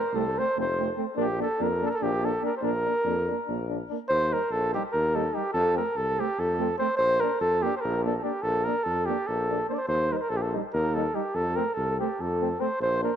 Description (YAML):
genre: balkan folk, Balkan brass band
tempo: 289 BPM (eighths)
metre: 7/8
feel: straight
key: Bb major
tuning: A4 = 441 Hz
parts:
  - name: mellow flugelhorn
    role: melody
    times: 0.0-13.2 s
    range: G4 to D5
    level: -26 LUFS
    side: right 1 dB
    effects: none
  - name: clear trombone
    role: accompaniment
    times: 0.0-13.1 s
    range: C4 to Eb4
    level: -35 LUFS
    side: left 15 dB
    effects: none
  - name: dark euphonium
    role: accompaniment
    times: 0.1-13.1 s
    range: G3 to Bb3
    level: -34 LUFS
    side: right 13 dB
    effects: none
  - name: warm tuba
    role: bass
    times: 0.1-13.0 s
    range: F1 to F2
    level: -30 LUFS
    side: left 2 dB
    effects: none
room: moderate plate reverb, RT60 2.9 s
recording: 1960s-style stereo with parts hard left and right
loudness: -24 LUFS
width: side -9 dB against mid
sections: 0.0-4.1 A section; 4.1-13.2 B section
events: none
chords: 0.0 F; 1.2 Bb; 4.1 Eb; 5.5 F; 7.0 Bb; 9.9 Eb; 11.3 F